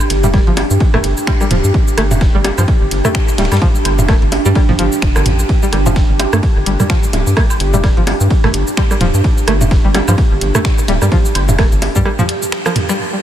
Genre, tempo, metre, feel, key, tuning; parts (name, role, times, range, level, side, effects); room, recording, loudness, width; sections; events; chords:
minimal techno; 128 BPM; 4/4; swing 58% on 16ths; A4 = 440 Hz
punchy analog drum machine; drums; 0.0-13.0 s; cabasa, finger snaps, hi-hat, rim click; -24 LUFS; equal; low-pass filter on hats, low-pass filter on perc, low-pass filter on snare, low-pass filter on room
organic electronic drum kit; percussion; 0.0-12.9 s; bongos, rim click, toms, woodblock; -19 LUFS; right 1 dB; tape echo
warbly tape-like pad; texture; 0.0-13.2 s; D4 to G5; -20 LUFS; right 2 dB; chorus, built-in reverb, phaser, sidechain pumping
rubbery square bass; bass; 0.1-12.0 s; D1 to G2; -15 LUFS; equal; sidechain pumping
dusty soul sampler-style drum kit; drums; 0.1-13.1 s; hi-hat, ride cymbal, snare drum; -32 LUFS; right 2 dB; high-pass filter on cymbals, low-pass filter on cymbals, high-pass filter on snare, low-pass filter on snare, high-pass filter on hats, low-pass filter on hats
string-like resonator pluck; riff; 0.2-13.1 s; D3 to A3; -20 LUFS; left 1 dB; chorus, sidechain pumping, tape echo
electronic kick drum; drums; 0.3-12.0 s; -14 LUFS; equal
light reverb; -11 LUFS; side -11 dB against mid
0.0-13.0 A section
break 12.1-13.0; drum fill 12.5-13.0; band accent 12.9
0.0 G5